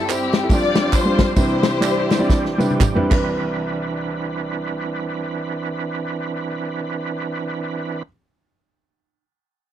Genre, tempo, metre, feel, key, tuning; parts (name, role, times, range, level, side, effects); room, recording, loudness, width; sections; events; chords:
uptempo gospel; 110-145 BPM; 4/4; swing 59% on 8ths; C major; A4 = 438 Hz
warm studio string section; melody; 0.0-2.8 s; C4 to D5; -22 LUFS; left 4 dB
warm upright piano; accompaniment; 0.0-8.1 s; G1 to D5; -22 LUFS; equal
overdriven tonewheel organ; sustained chords; 0.0-8.0 s; E3 to B4; -25 LUFS; right 4 dB; slow rotary speaker, chorus vibrato
natural country drum kit; drums; 0.1-3.2 s; crash cymbal, kick drum, ride cymbal, snare drum, toms; -18 LUFS; equal
handclaps and tambourine; percussion; 0.1-3.6 s; -30 LUFS; right 11 dB
little or no reverb; dry, close 1970s-style studio recording; -18 LUFS; side -11 dB against mid
0.0-3.3 A section; 3.3-7.7 B section
slowing down 0.0-3.3; drum fill 2.3-3.3
0.0 C/G; 0.5 G7sus4; 1.4 Cmaj9